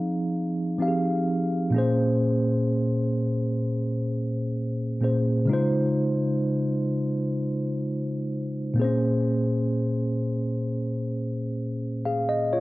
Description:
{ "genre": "R&B", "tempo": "64 BPM", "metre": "4/4", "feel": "straight", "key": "unclear", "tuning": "A4 = 440 Hz", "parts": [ { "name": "tine electric piano", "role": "solo", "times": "0.0-12.6 s", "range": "Bb2 to F5", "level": "-23 LUFS", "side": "equal", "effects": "medium stereo tremolo" } ], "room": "moderate lush hall reverb, RT60 2.3 s", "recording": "worn, warbling old tape, cassette tape, warbly pitch drift", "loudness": "-23 LUFS", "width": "side -19 dB against mid", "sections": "0.0-12.6 A section", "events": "none", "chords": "0.0 Fm7; 1.7 Bbm7; 5.5 Dbmaj7; 8.8 Bbm7" }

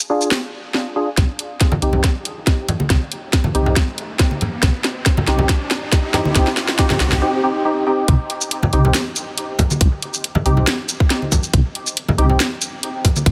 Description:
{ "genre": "deep dubstep", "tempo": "139 BPM", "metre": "4/4", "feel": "swing 53% on 16ths, half-time", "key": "C minor", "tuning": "A4 = 440 Hz", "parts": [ { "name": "garage drum kit", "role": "drums", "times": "0.0-13.3 s", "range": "hi-hat, shaker, snare drum", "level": "-23 LUFS", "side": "equal", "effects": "overdrive, high-pass filter on perc, small room ambience, high-pass filter on snare, high-pass filter on hats" }, { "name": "percussive organ stab", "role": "stabs", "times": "0.1-12.4 s", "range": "C4 to Ab4", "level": "-25 LUFS", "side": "equal", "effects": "ensemble chorus, cassette tape, dub echo" }, { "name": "deep soft wobble bass", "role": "bass", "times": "1.2-13.3 s", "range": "C2", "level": "-20 LUFS", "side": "equal", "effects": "chorus" }, { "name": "electronic kick drum", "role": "drums", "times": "1.2-13.3 s", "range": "none", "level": "-18 LUFS", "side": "equal", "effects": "overdrive, small room ambience" }, { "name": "riser", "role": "sound effects", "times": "2.4-7.2 s", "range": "none", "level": "-32 LUFS", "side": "equal", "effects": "none" }, { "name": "congas", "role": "percussion", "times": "1.7-13.2 s", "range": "none", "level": "-24 LUFS", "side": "equal", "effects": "none" } ], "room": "light reverb, digital ambience", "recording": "heavily compressed radio sound", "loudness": "-18 LUFS", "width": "mono", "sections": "0.0-1.2 A section; 1.2-8.1 B section; 8.1-13.3 C section", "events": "build-up 1.2-8.1; drum fill 1.2-7.2; filter sweep on synth stab 1.2-8.1; riser 2.4-7.2; drop 8.1-13.3", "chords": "0.0 Ddim; 1.2 Cm" }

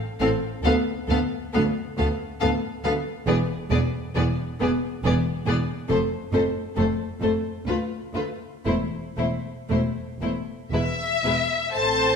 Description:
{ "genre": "classical, slow romantic movement for string orchestra", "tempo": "56-70 BPM", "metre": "3/4", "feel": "rubato", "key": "unclear", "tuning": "A4 = 441 Hz", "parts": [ { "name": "rich studio violin section", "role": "melody", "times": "0.2-12.2 s", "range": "B4 to A5", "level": "-29 LUFS", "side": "left 5 dB", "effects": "none" }, { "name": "warm studio violin section", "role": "second line", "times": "0.2-12.2 s", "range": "C4 to A4", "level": "-29 LUFS", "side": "left 2 dB", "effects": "none" }, { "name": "rich studio viola section", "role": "accompaniment", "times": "0.2-12.2 s", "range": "G#3 to C5", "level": "-28 LUFS", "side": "equal", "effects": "none" }, { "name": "rich studio cello section", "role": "bass", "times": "0.2-12.2 s", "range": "D2 to A2", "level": "-30 LUFS", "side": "right 1 dB", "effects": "none" }, { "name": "rich studio double bass section", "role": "bass", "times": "0.2-12.2 s", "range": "E1 to D2", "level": "-28 LUFS", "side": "right 2 dB", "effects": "none" } ], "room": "wet recital hall reverb, RT60 1.5 s", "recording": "minimal, uncompressed stereo recording", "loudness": "-22 LUFS", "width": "side -6 dB against mid", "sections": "0.0-11.7 A section", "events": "none", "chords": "0.0 F/A (rootless); 0.6 Bm/D; 3.3 E5; 5.9 F; 7.7 Bm7 (rootless); 8.7 A5/E; 10.7 E" }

